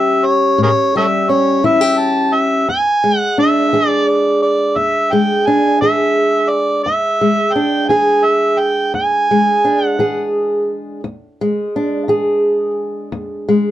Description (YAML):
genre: acoustic country blues, solo or duo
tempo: 58 BPM (dotted quarters)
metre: 12/8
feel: straight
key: E mixolydian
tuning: A4 = 438 Hz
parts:
  - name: overdriven harmonica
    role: melody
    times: 0.0-10.3 s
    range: G#4 to A5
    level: -15 LUFS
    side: right 2 dB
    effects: none
  - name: fingerpicked old ladder-braced acoustic guitar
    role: accompaniment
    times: 0.0-13.7 s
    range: E2 to G#4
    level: -15 LUFS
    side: equal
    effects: none
room: moderate small room reverb, RT60 0.5 s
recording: dark, warm production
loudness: -12 LUFS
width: side -13 dB against mid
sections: 0.0-13.7 A section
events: none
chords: 0.0 A7; 2.7 E7